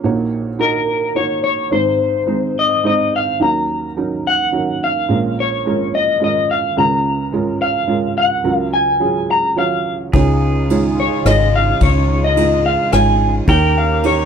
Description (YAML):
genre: acoustic folk-pop ballad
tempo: 107 BPM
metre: 3/4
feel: straight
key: Db major from 10.1 s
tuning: A4 = 436 Hz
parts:
  - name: felt-muted upright piano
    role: accompaniment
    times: 0.0-14.3 s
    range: Ab1 to Eb5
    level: -19 LUFS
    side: right 4 dB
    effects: none
  - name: electric guitar through a small old amp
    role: melody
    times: 0.6-14.3 s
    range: Bb4 to Bb5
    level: -16 LUFS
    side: left 2 dB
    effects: harmonic tremolo
  - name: pedal steel guitar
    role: second line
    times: 10.1-14.3 s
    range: Ab4 to Bb4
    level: -24 LUFS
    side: right 2 dB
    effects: none
  - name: muted chamber string section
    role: sustained chords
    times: 10.1-14.3 s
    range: Db3 to G4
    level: -24 LUFS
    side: left 2 dB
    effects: none
  - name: fingered electric bass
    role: bass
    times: 10.1-14.3 s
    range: Ab1 to Eb2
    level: -16 LUFS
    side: left 1 dB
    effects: none
  - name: soft brush drum kit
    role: drums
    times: 10.1-14.2 s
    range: kick drum, ride cymbal, rim click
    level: -23 LUFS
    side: left 1 dB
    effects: none
room: little or no reverb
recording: dry, close 1970s-style studio recording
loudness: -14 LUFS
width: side -7 dB against mid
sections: 0.0-3.4 A section; 3.4-10.1 B section; 10.1-14.3 C section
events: none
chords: 0.0 Gb6/Bb; 1.7 Ab; 3.4 Ebm7; 5.1 Bbm7; 6.8 Db6; 8.4 Gbmaj7/Db; 10.1 Dbadd9; 13.5 Eb7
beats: | 0.04 0.60 1.16 | 1.72 2.28 2.85 | 3.42 3.98 4.55 | 5.11 5.67 6.22 | 6.78 7.33 7.89 | 8.45 9.01 9.57 | 10.14 10.70 11.26 | 11.82 12.38 12.93 | 13.48 14.04